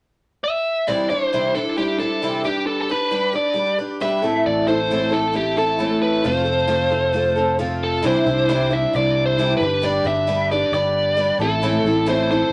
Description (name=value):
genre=rock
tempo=134 BPM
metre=4/4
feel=straight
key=C major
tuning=A4 = 440 Hz
part: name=biting lead guitar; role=melody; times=0.4-12.5 s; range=G4 to E5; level=-23 LUFS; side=equal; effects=overdrive
part: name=picked twelve-string acoustic guitar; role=accompaniment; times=0.9-12.5 s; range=A2 to C5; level=-24 LUFS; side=equal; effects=none
part: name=fingered electric bass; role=bass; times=4.5-12.5 s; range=F1 to C2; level=-28 LUFS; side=equal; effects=none
room=wet studio reverb, RT60 0.5 s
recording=none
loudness=-20 LUFS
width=mono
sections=0.9-8.0 A section; 8.0-12.5 B section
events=none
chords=0.0 N.C.; 0.9 Cadd9; 2.4 G; 4.2 Am; 6.3 F; 8.0 Cadd9; 9.6 G; 11.4 Am